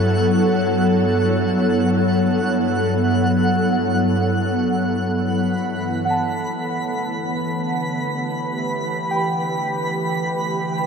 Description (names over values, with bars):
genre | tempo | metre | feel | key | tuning
ambient | free time | none | none | G lydian | A4 = 440 Hz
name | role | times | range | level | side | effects
ethereal airy pad | sustained chords | 0.0-10.9 s | G2 to C#5 | -19 LUFS | equal | ensemble chorus, built-in reverb
twinkling granular texture | texture | 0.0-10.9 s | F#5 to B5 | -26 LUFS | equal | built-in reverb
muted felt-like synth keys | arpeggios | 6.0-10.9 s | F#5 to B5 | -26 LUFS | right 1 dB | chorus, diffuse ambient delay
room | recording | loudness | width
wet huge ambient reverb, RT60 8.2 s | in a vast, echoing space | -18 LUFS | side -6 dB against mid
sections
0.0-5.1 A section; 5.1-10.9 B section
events
none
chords
0.0 Dadd9/G (rootless); 5.1 G6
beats
free time